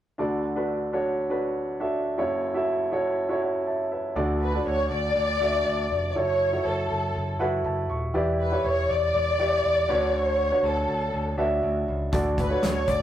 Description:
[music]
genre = piano-driven pop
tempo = 121 BPM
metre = 4/4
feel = straight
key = D major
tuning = A4 = 440 Hz
[part]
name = clear baby grand piano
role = accompaniment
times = 0.2-13.0 s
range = F#1 to C#6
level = -26 LUFS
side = right 1 dB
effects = none
[part]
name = modern bright picked electric bass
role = bass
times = 4.2-13.0 s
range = Eb1 to D2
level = -30 LUFS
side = equal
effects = none
[part]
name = dark symphonic violin section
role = melody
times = 4.4-13.0 s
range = A4 to D5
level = -25 LUFS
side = left 1 dB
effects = none
[part]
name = natural country drum kit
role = drums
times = 12.1-13.0 s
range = hi-hat, kick drum, snare drum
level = -27 LUFS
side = equal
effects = none
[sound]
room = wet studio reverb, RT60 0.5 s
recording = rough rehearsal-room recording, warm saturation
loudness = -23 LUFS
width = side -11 dB against mid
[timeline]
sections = 0.2-4.2 A section; 4.2-13.0 B section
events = grand piano fill 7.2-8.1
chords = 0.2 D; 2.2 F#m7; 4.2 D; 6.2 F#m7; 8.1 Em7; 9.9 Bmadd9/D; 12.1 D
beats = | 0.19 0.69 1.18 1.68 | 2.18 2.67 3.17 3.67 | 4.17 4.67 5.16 5.66 | 6.16 6.66 7.15 7.65 | 8.15 8.64 9.14 9.64 | 10.14 10.63 11.13 11.63 | 12.13 12.63

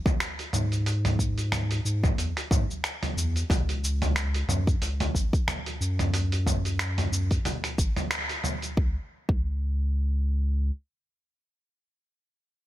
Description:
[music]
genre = organic downtempo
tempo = 91 BPM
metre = 4/4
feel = swing 56% on 16ths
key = C# minor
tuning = A4 = 441 Hz
[part]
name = dusty soul sampler-style drum kit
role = drums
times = 0.1-8.7 s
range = cabasa, finger snaps, hi-hat, toms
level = -29 LUFS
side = right 1 dB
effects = none
[part]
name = electronic kick drum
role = drums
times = 0.1-9.5 s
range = none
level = -25 LUFS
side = equal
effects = none
[part]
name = warm sub bass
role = bass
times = 0.5-10.7 s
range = G#1 to G#2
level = -26 LUFS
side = equal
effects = sidechain pumping
[sound]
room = little or no reverb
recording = none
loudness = -25 LUFS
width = side -14 dB against mid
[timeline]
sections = 0.0-8.8 A section; 8.8-11.4 B section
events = band accent 8.1-8.4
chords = none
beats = 0.20 | 0.86 1.52 2.18 2.84 | 3.50 4.16 4.82 5.48 | 6.13 6.79 7.45 8.11 | 8.77 9.43 10.09

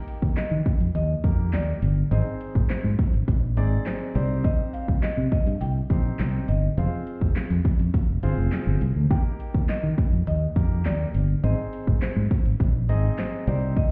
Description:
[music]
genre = dance-pop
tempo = 103 BPM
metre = 4/4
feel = straight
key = unclear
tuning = A4 = 440 Hz
[part]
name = marimba with soft mallets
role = melody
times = 0.0-13.9 s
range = C5 to G5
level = -37 LUFS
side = equal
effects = delay
[part]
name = clear concert grand piano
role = accompaniment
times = 0.0-13.9 s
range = Bb3 to Eb5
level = -36 LUFS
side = equal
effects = none
[part]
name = pop drum kit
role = drums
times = 0.1-13.9 s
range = handclaps, hi-hat, kick drum, snare drum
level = -26 LUFS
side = equal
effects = overdrive
[part]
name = fingered electric bass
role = bass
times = 0.2-13.8 s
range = F1 to Eb3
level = -26 LUFS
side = equal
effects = sidechain pumping
[sound]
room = little or no reverb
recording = heard muffled through a wall, stone room reverb, EQ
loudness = -24 LUFS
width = mono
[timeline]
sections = 0.0-13.9 A section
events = none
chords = 0.0 Eb; 2.1 Ab; 4.2 Cm; 6.8 Fm; 9.1 Eb; 11.4 Ab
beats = 0.37 0.95 1.53 | 2.12 2.70 3.28 3.86 | 4.45 5.03 5.61 6.19 | 6.78 7.36 7.94 8.52 | 9.11 9.69 10.27 10.85 | 11.44 12.02 12.60 13.18 | 13.77

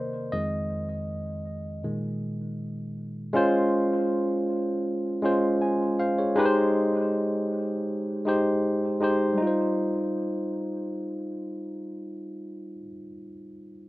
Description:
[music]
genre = soul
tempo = 79 BPM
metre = 4/4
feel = straight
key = Eb major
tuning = A4 = 440 Hz
[part]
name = barky tine electric piano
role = solo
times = 0.0-13.9 s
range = F2 to Ab5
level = -25 LUFS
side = equal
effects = analog delay
[sound]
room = moderate studio ambience, RT60 0.5 s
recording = rough home demo mix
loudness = -24 LUFS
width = side -18 dB against mid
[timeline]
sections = 0.0-3.3 A section; 3.3-9.4 B section; 9.4-12.4 C section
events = tine electric piano solo 0.0-3.3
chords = 0.3 Fm7; 1.8 Bb7sus4; 3.3 Dbmaj7; 6.4 Abmaj7; 9.4 Eb69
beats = | 0.33 1.08 1.84 2.59 | 3.35 4.10 4.86 5.62 | 6.37 7.13 7.89 8.64 | 9.40 10.16 10.92 11.68

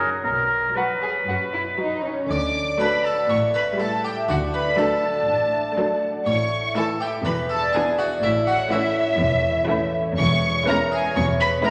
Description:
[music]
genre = cinematic, playful, whimsical film cue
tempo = 122 BPM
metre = 4/4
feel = straight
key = D major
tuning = A4 = 442 Hz
[part]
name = rich symphonic violin section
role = melody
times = 0.0-11.7 s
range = E5 to D6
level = -27 LUFS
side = equal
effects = none
[part]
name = clear oboe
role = second line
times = 0.0-2.0 s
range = A#4 to B4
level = -25 LUFS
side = equal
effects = none
[part]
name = rich chamber violin section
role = second line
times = 0.0-11.7 s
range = C#4 to A4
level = -32 LUFS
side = equal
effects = none
[part]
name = clear chamber viola section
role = accompaniment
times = 0.0-11.7 s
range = E3 to B3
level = -33 LUFS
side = equal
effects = none
[part]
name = concert harp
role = arpeggios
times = 0.0-11.7 s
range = E2 to G5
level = -27 LUFS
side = equal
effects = none
[part]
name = dark chamber double bass section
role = bass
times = 0.0-11.5 s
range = E1 to D2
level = -32 LUFS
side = equal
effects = none
[part]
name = rich chamber cello section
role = bass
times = 0.0-11.5 s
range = E2 to D3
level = -32 LUFS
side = equal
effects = none
[part]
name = harpsichord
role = melody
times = 2.3-11.7 s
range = E4 to D5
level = -31 LUFS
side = equal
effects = none
[sound]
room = wet scoring stage reverb, RT60 2.0 s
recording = none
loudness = -22 LUFS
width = mono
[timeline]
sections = 0.0-2.3 A section; 2.3-11.7 B section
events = none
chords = 0.3 B; 2.3 D; 3.3 A5; 4.3 D; 6.3 A; 7.2 E7; 8.2 A; 10.2 C#m7/E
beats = | 0.25 0.77 1.28 1.79 | 2.30 2.80 3.30 3.79 | 4.29 4.79 5.28 5.78 | 6.27 6.76 7.25 7.74 | 8.23 8.71 9.20 9.70 | 10.19 10.67 11.16 11.65

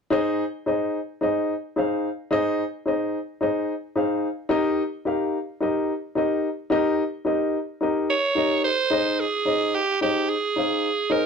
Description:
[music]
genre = soul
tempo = 109 BPM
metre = 4/4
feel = straight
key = Ab major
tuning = A4 = 440 Hz
[part]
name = dark upright piano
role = accompaniment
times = 0.1-11.3 s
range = Eb4 to F5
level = -23 LUFS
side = left 1 dB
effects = none
[part]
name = raspy alto saxophone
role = melody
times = 8.1-11.3 s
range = G4 to Db5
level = -22 LUFS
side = right 4 dB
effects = none
[sound]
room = moderate studio reverb, RT60 0.5 s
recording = none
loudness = -22 LUFS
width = side -6 dB against mid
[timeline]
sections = 0.1-8.9 A section; 8.9-11.3 B section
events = none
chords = 0.1 Ab; 4.5 Eb; 8.9 Ab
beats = | 0.12 0.67 1.22 1.76 | 2.31 2.86 3.41 3.96 | 4.51 5.06 5.61 6.16 | 6.71 7.26 7.81 8.36 | 8.91 9.46 10.01 10.56 | 11.11

